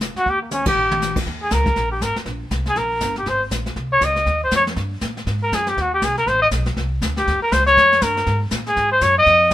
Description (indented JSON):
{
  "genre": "jazz, small-group swing and bop",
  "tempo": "240 BPM",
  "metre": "4/4",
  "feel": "swing 59% on 8ths",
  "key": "Eb mixolydian",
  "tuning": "A4 = 436 Hz",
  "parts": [
    { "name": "upright bass", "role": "bass", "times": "0.0-9.5 s", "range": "F1 to Bb2", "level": "-24 LUFS", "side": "equal", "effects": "none" },
    { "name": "jazz brush drum kit", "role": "drums", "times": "0.0-9.5 s", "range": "brushed snare drum, crash cymbal, hi-hat, kick drum, ride cymbal, snare drum, toms", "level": "-26 LUFS", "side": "left 1 dB", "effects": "none" },
    { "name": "warm trumpet", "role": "melody", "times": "0.2-9.5 s", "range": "Bb3 to Eb5", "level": "-16 LUFS", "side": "equal", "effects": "none" }
  ],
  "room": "light reverb",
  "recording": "minimal, uncompressed stereo recording",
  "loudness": "-16 LUFS",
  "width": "side -14 dB against mid",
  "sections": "0.0-1.3 A section; 1.3-9.5 B section",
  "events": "drum fill 0.5-1.0; band accent 0.6; trumpet solo 1.3-9.5",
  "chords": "0.3 Cm7; 0.8 Gm/Bb; 1.3 Eb7; 3.3 Ab; 4.3 Eb; 5.3 Ab7; 6.3 Amadd9; 7.3 Eb7; 8.3 Gbadd9",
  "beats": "0.00 | 0.25 0.51 0.76 1.01 | 1.26 1.51 1.76 2.01 | 2.26 2.51 2.76 3.01 | 3.26 3.51 3.76 4.01 | 4.26 4.51 4.76 5.01 | 5.26 5.51 5.76 6.01 | 6.26 6.51 6.76 7.01 | 7.26 7.51 7.76 8.01 | 8.26 8.51 8.76 9.01 | 9.26 9.51"
}